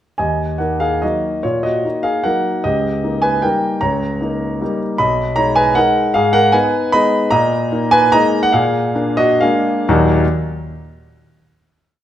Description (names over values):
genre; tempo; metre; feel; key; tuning
classical, piano waltz; 116-161 BPM; 3/4; rubato; Eb minor; A4 = 442 Hz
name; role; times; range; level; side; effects
warm concert grand piano; solo; 0.2-10.2 s; Cb2 to Cb6; -14 LUFS; equal; none
room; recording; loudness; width
moderate recital hall reverb, RT60 1.4 s; none; -13 LUFS; side -11 dB against mid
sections
0.2-9.9 A section; 9.9-11.2 final chord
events
slowing down 6.7-9.9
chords
0.2 Ebm; 2.7 Eb7/Db; 5.0 Abm/Cb; 6.1 Abm; 7.3 Bb7sus4; 8.5 Bb7; 9.9 Ebm